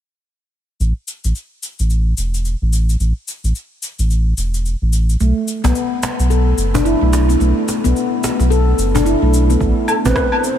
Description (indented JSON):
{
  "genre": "organic downtempo",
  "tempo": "109 BPM",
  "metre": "4/4",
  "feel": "swing 60% on 16ths",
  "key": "A dorian",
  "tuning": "A4 = 440 Hz",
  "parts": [
    { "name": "warm sub bass", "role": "bass", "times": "0.8-10.1 s", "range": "E1 to B1", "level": "-15 LUFS", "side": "equal", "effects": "sidechain pumping" },
    { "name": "electronic cabasa, woodblock and rim click", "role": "drums", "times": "0.8-10.6 s", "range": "none", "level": "-25 LUFS", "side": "left 3 dB", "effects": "overdrive" },
    { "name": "handpan", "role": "arpeggios", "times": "5.2-10.1 s", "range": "A3 to A4", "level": "-17 LUFS", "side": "left 1 dB", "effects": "analog delay" },
    { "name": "cajon", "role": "percussion", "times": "5.6-10.1 s", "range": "none", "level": "-25 LUFS", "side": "right 3 dB", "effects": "none" },
    { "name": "electronic kick drum", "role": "drums", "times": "9.6-10.3 s", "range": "none", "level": "-22 LUFS", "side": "equal", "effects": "overdrive" },
    { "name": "breathy mellow low ney", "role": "melody", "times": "9.9-10.6 s", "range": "A4 to C5", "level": "-20 LUFS", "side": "equal", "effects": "analog delay" }
  ],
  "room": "light reverb, studio ambience",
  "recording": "none",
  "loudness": "-14 LUFS",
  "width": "side -10 dB against mid",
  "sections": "0.8-9.6 A section",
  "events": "none",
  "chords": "0.8 A5; 5.2 B7(no3); 9.6 Asus2",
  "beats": "| 0.80 1.35 1.90 2.45 | 3.00 3.55 4.10 4.66 | 5.21 5.76 6.31 6.86 | 7.41 7.96 8.51 9.06 | 9.61 10.16"
}